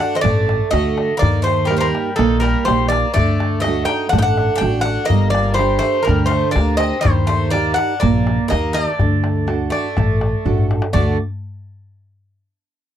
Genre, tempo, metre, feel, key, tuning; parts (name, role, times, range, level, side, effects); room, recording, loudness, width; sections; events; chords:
greek folk, Greek bouzouki band; 123 BPM; 4/4; straight; D phrygian dominant; A4 = 440 Hz
Greek bouzouki; melody; 0.0-11.2 s; A4 to G5; -20 LUFS; equal
Greek bouzouki; second line; 0.0-11.2 s; Eb3 to Eb4; -26 LUFS; left 4 dB
fingerpicked steel-string acoustic guitar; accompaniment; 0.0-11.2 s; D3 to Bb4; -22 LUFS; right 8 dB
darbuka; percussion; 0.0-11.2 s; -21 LUFS; left 2 dB
upright bass; bass; 0.2-11.2 s; G1 to Eb2; -20 LUFS; left 1 dB
little or no reverb; dry, close 1970s-style studio recording; -15 LUFS; side -10 dB against mid
0.0-10.9 A section; 10.9-12.9 B section
drum fill 10.5-10.9
0.0 D; 1.2 Eb; 3.2 D; 5.1 Gm; 7.0 Eb; 9.0 D